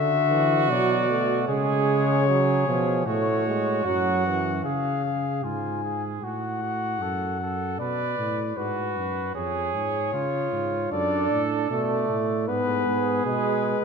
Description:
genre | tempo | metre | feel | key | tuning
classical, imitative canzona for brass ensemble | 76 BPM | 4/4 | straight | unclear | A4 = 440 Hz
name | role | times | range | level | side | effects
warm cornet | melody | 0.0-13.8 s | B4 to G#5 | -27 LUFS | left 8 dB | none
warm trumpet | second line | 0.0-13.8 s | E#4 to B4 | -29 LUFS | right 6 dB | none
clear trombone | accompaniment | 0.0-4.6, 10.9-13.8 s | D3 to D4 | -26 LUFS | right 3 dB | none
dark bass trombone | bass | 0.0-13.8 s | E#2 to D3 | -28 LUFS | right 2 dB | none
room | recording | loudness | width
moderate concert hall reverb, RT60 2.1 s | minimal, uncompressed stereo recording | -22 LUFS | side -6 dB against mid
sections
0.0-4.6 A section; 4.6-13.8 B section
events
none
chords
0.0 Bm/D; 1.5 C#; 3.1 F#m/A; 4.6 C#; 6.2 F#m/A; 7.8 Bm; 9.4 C#/E#; 10.9 D/F#; 12.5 G#m

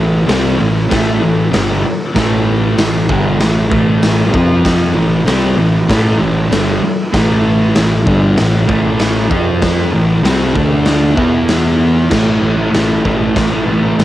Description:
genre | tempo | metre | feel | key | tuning
garage rock duo or trio | 96 BPM | 4/4 | straight | A minor | A4 = 439 Hz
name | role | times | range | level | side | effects
thick fuzz guitar | riff | 0.0-14.0 s | G2 to F4 | -13 LUFS | equal | distortion, cassette tape
fuzz picked electric bass | bass | 0.0-14.0 s | G1 to F2 | -17 LUFS | equal | overdrive
raw garage drum kit | drums | 0.3-14.0 s | crash cymbal, hi-hat, kick drum, snare drum | -16 LUFS | equal | none
room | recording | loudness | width
light reverb, small room ambience | home recording on cassette | -10 LUFS | side -14 dB against mid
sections
0.0-12.1 A section; 12.1-14.0 B section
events
none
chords
0.0 Am; 4.3 F5; 5.0 Am; 9.3 F5; 9.9 Am; 10.6 D5; 11.2 E5; 12.1 A5

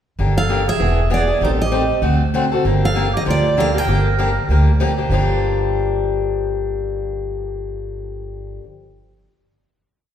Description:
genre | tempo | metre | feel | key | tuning
acoustic string swing (jazz manouche) | 195 BPM | 4/4 | swing 58% on 8ths | G minor | A4 = 440 Hz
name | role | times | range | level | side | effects
picked swing-style acoustic guitar | accompaniment | 0.2-8.7 s | G2 to A4 | -21 LUFS | left 4 dB | none
upright bass | bass | 0.2-8.6 s | E1 to D2 | -19 LUFS | right 1 dB | none
picked steel-string acoustic guitar | melody | 0.4-4.8 s | C5 to G5 | -21 LUFS | right 2 dB | none
growling clarinet | second line | 0.4-4.8 s | Eb4 to Bb4 | -26 LUFS | right 5 dB | none
room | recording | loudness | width
wet recital hall reverb, RT60 1.6 s | recorded in a church or concert hall | -16 LUFS | side -9 dB against mid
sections
0.2-5.1 A section; 5.1-7.6 final chord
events
none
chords
0.2 Gm9; 0.8 E7; 1.4 Am7b5; 2.0 D7; 2.6 Gm7

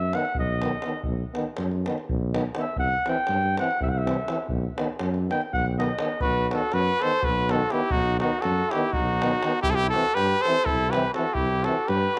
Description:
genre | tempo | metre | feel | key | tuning
balkan folk, Balkan brass band | 244 BPM (eighths) | 7/8 | straight | B phrygian dominant | A4 = 435 Hz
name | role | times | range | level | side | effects
clear flugelhorn | second line | 0.0-12.2 s | D#4 to G5 | -31 LUFS | equal | slapback echo
mellow tuba | bass | 0.0-12.0 s | B1 to G2 | -30 LUFS | equal | none
warm French horn | accompaniment | 0.1-11.8 s | B3 to C4 | -36 LUFS | equal | none
warm euphonium | accompaniment | 0.1-11.8 s | D#3 to E3 | -37 LUFS | equal | none
davul | percussion | 0.1-12.2 s | none | -35 LUFS | equal | none
warm trumpet | melody | 6.2-12.2 s | F#4 to C5 | -26 LUFS | equal | none
room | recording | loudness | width
light reverb, studio reverb | none | -25 LUFS | mono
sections
0.0-6.2 A section; 6.2-12.2 B section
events
flugelhorn solo 0.0-6.2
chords
0.0 B; 2.8 C; 4.5 B; 9.6 C

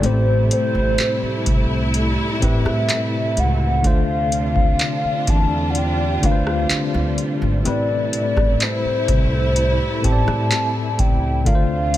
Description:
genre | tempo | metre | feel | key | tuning
contemporary R&B | 63 BPM | 4/4 | straight | unclear | A4 = 436 Hz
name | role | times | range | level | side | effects
hollow clarinet-like synth lead | melody | 0.0-12.0 s | C5 to A5 | -23 LUFS | equal | chorus, ping-pong delay
tine electric piano | accompaniment | 0.0-12.0 s | A2 to D5 | -23 LUFS | left 2 dB | medium stereo tremolo
warm studio string section | sustained chords | 0.0-12.0 s | C3 to F4 | -26 LUFS | right 1 dB | none
upright bass | bass | 0.0-12.0 s | G#1 to A2 | -22 LUFS | equal | none
booming analog drum machine | drums | 0.0-12.0 s | handclaps, hi-hat, kick drum, rim click | -20 LUFS | equal | vintage 12-bit sampler grit
room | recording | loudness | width
little or no reverb | none | -16 LUFS | side -13 dB against mid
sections
0.0-12.0 A section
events
none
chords
0.0 Am7; 3.8 Dm7; 7.7 Am7; 11.5 Dm7

